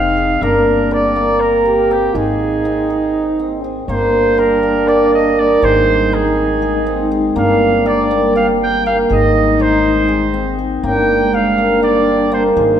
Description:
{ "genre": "contemporary instrumental, chamber music in an uneven meter", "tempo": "242 BPM (eighths)", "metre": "7/8", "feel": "straight", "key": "unclear", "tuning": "A4 = 440 Hz", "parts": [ { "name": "warm flugelhorn", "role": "melody", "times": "0.0-12.8 s", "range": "G4 to G5", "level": "-18 LUFS", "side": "right 2 dB", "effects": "none" }, { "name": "mellow French horn", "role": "second line", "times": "0.0-12.8 s", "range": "C4 to G4", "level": "-19 LUFS", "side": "left 1 dB", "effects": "none" }, { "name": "cimbalom", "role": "arpeggios", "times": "0.0-12.8 s", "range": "Bb3 to Ab4", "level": "-15 LUFS", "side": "right 1 dB", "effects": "none" }, { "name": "upright bass", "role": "bass", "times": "0.0-12.8 s", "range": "F1 to Ab1", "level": "-23 LUFS", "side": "equal", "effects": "none" }, { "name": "glassy FM pad", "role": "sustained chords", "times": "4.4-12.8 s", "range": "G3 to Bb4", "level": "-22 LUFS", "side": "left 2 dB", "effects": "ensemble chorus, built-in reverb, phaser" } ], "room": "moderate scoring stage reverb, RT60 1.5 s", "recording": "none", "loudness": "-12 LUFS", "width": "side -9 dB against mid", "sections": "0.0-3.9 A section; 3.9-12.8 B section", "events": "none", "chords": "0.4 Gm; 2.1 Ab; 3.9 Gm; 5.6 Ab; 7.4 Gm; 9.1 Ab; 10.8 Gm" }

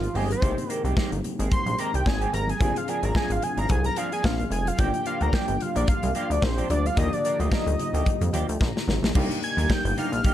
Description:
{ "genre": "early-eighties boogie funk", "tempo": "110 BPM", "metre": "4/4", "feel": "swing 56% on 16ths", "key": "unclear", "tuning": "A4 = 440 Hz", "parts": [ { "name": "fat analog lead", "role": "melody", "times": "0.0-10.3 s", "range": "F4 to Ab6", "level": "-28 LUFS", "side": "equal", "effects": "chorus" }, { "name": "FM electric piano", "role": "accompaniment", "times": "0.0-10.3 s", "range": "D3 to Bb5", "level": "-33 LUFS", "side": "left 5 dB", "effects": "chorus" }, { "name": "semi-hollow electric guitar", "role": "riff", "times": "0.0-10.3 s", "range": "Eb3 to Bb4", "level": "-34 LUFS", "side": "right 6 dB", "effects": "analog chorus" }, { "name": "chorused synth bass", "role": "bass", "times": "0.0-10.2 s", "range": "F1 to F2", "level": "-26 LUFS", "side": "equal", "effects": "none" }, { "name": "modern studio drum kit", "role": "drums", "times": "0.0-10.3 s", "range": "crash cymbal, hi-hat, kick drum, snare drum", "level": "-26 LUFS", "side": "equal", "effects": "none" }, { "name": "congas", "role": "percussion", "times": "0.2-10.3 s", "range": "none", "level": "-35 LUFS", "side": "equal", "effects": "none" } ], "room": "light reverb", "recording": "dark, warm production, lossy compression artefacts", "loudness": "-22 LUFS", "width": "side -12 dB against mid", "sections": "0.0-9.2 A section; 9.2-10.3 B section", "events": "analog synth lead solo 0.0-9.2; FM electric piano fill 8.1-9.2; drum fill 8.6-9.2", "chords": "0.4 Abmaj7; 2.6 Bb7; 4.8 Gm7; 7.0 Ebmaj9; 9.2 Cm7 (rootless)" }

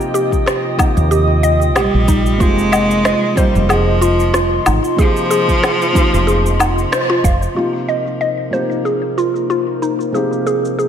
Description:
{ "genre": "organic downtempo", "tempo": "93 BPM", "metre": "4/4", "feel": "swing 55% on 16ths", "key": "unclear", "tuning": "A4 = 440 Hz", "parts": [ { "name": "felt-muted upright piano", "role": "accompaniment", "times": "0.0-10.9 s", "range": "C3 to G4", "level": "-23 LUFS", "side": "right 1 dB", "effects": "sidechain pumping, ping-pong delay" }, { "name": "warbly tape-like pad", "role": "sustained chords", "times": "0.0-10.9 s", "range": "Bb3 to Eb6", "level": "-22 LUFS", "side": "equal", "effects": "chorus, built-in reverb, sidechain pumping" }, { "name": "electronic cabasa, rim click and woodblock", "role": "drums", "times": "0.0-10.9 s", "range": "none", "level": "-20 LUFS", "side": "left 1 dB", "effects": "low-pass filter on perc, studio ambience, low-pass filter on snare" }, { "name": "mallet-like synth pluck", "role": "arpeggios", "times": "0.1-10.9 s", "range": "Eb4 to F5", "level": "-18 LUFS", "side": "equal", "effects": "chorus, ping-pong delay" }, { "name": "electronic kick drum", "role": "drums", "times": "0.3-7.4 s", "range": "none", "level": "-16 LUFS", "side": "equal", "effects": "studio ambience" }, { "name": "woody fretless electric bass", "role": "bass", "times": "1.0-7.5 s", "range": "F1 to Eb2", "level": "-16 LUFS", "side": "equal", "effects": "wide subtle chorus" }, { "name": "clear cello", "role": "melody", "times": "1.8-6.9 s", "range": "F3 to Ab3", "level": "-18 LUFS", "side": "equal", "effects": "digital delay" } ], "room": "light reverb, digital ambience", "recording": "none", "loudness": "-12 LUFS", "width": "side -8 dB against mid", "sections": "0.0-7.6 A section; 7.6-10.9 B section", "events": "band accent 6.9-7.2; filter sweep on drum 7.6-10.9; filter sweep on synth pluck 7.6-10.9", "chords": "0.0 Ebadd9; 2.4 Fm7; 7.6 Abmaj9" }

